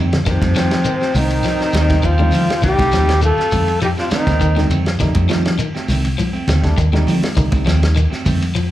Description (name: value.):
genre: afrobeat.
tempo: 101 BPM.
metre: 4/4.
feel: straight.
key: F mixolydian.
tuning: A4 = 439 Hz.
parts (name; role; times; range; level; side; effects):
tine electric piano; accompaniment; 0.0-8.0 s; G3 to Eb4; -26 LUFS; right 2 dB; medium tremolo, slapback echo.
clean electric guitar; stabs; 0.0-8.4 s; Eb3 to C4; -26 LUFS; right 7 dB; wide subtle chorus, slapback echo.
fingered electric bass; bass; 0.0-8.5 s; C2 to F3; -16 LUFS; equal; none.
warm soul drum kit; drums; 0.1-8.7 s; hi-hat, kick drum, ride cymbal, snare drum; -23 LUFS; equal; none.
congas; percussion; 0.1-8.4 s; none; -24 LUFS; equal; none.
shekere; percussion; 0.1-8.7 s; none; -28 LUFS; left 1 dB; none.
breathy trombone; melody; 0.3-4.7 s; C4 to A4; -19 LUFS; left 1 dB; slapback echo.
edgy alto saxophone; second line; 0.3-4.7 s; F3 to F4; -28 LUFS; right 3 dB; slapback echo.
raspy baritone saxophone; second line; 0.3-4.7 s; C3 to A3; -26 LUFS; left 2 dB; slapback echo.
electric guitar at the edge of break-up; arpeggios; 0.3-8.7 s; D3 to F3; -25 LUFS; left 6 dB; spring reverb, slapback echo.
room: studio reverb.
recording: live gig heard through the venue's PA, club reverb.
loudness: -14 LUFS.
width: side -14 dB against mid.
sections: 0.0-8.7 A section.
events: drum fill 0.0.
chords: 0.0 F7.